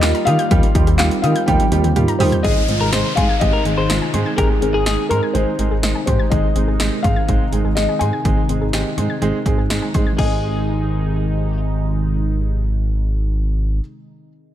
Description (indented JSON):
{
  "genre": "synth-pop",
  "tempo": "124 BPM",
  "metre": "4/4",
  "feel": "straight",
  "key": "Ab major",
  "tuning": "A4 = 440 Hz",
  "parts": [
    { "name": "felt-muted upright piano", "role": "melody", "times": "0.0-13.8 s", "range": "Ab4 to Ab5", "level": "-23 LUFS", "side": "left 3 dB", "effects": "none" },
    { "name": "warm concert grand piano", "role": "accompaniment", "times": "0.0-13.8 s", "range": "G3 to Bb4", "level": "-24 LUFS", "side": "right 4 dB", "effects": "none" },
    { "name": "phased analog pad", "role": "sustained chords", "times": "0.0-13.8 s", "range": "C3 to F4", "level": "-26 LUFS", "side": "right 1 dB", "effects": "phaser, chorus" },
    { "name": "soft round pluck", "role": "arpeggios", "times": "0.0-13.9 s", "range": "Eb3 to Ab6", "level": "-29 LUFS", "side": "left 5 dB", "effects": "chorus, ping-pong delay" },
    { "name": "smooth gliding synth bass", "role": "bass", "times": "0.0-13.8 s", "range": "Ab1 to Eb3", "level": "-19 LUFS", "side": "equal", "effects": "none" },
    { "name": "punchy analog drum machine", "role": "drums", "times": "0.0-10.3 s", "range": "crash cymbal, handclaps, hi-hat, kick drum, snare drum, toms", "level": "-20 LUFS", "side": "equal", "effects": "none" },
    { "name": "twelve-string electric guitar", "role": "second line", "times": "2.4-5.2, 10.2-11.6 s", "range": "Ab4 to C5", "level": "-26 LUFS", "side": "left 4 dB", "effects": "ping-pong delay" },
    { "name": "downlifter", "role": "sound effects", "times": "2.4-6.3 s", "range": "none", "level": "-28 LUFS", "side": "equal", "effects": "none" }
  ],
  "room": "light reverb",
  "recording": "none",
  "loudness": "-15 LUFS",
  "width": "side -11 dB against mid",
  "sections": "0.0-2.4 A section; 2.4-10.2 B section; 10.2-14.1 C section",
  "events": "drum fill 1.5-2.4",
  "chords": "0.0 Ebadd9; 2.4 Ab",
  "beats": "0.03 | 0.51 0.99 1.48 1.96 | 2.44 2.93 3.41 3.90 | 4.38 4.86 5.35 5.83 | 6.32 6.80 7.28 7.77 | 8.25 8.73 9.22 9.70 | 10.19 10.67 11.15 11.64 | 12.12 12.61 13.09 13.57"
}